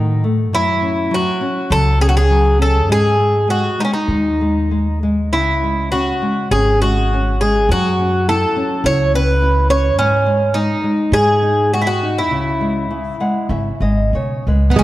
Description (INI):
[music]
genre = fado-style ballad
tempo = 91-106 BPM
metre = 4/4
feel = rubato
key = C# minor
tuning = A4 = 438 Hz
[part]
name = Irish bouzouki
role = melody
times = 0.0-14.8 s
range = C#4 to C#5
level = -16 LUFS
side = equal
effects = none
[part]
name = nylon-string guitar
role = accompaniment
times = 0.0-14.8 s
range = C#3 to F#5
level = -21 LUFS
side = left 1 dB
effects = none
[part]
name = upright bass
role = bass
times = 0.0-14.8 s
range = G#1 to A2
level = -18 LUFS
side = equal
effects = none
[part]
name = fingerpicked plugged-in twelve-string acoustic guitar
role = second line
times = 14.7-14.8 s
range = G#3 to B3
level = -12 LUFS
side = right 4 dB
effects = none
[sound]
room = moderate concert hall reverb, RT60 2.5 s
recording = dark, warm production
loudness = -14 LUFS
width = side -15 dB against mid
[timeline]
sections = 0.0-14.8 A section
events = nylon-string guitar fill 12.9-14.8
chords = 0.0 D#dim; 0.5 F#5; 2.9 G#5; 5.3 C#m; 7.7 F#m7; 10.0 G#sus4; 11.1 G#5; 12.3 C#m7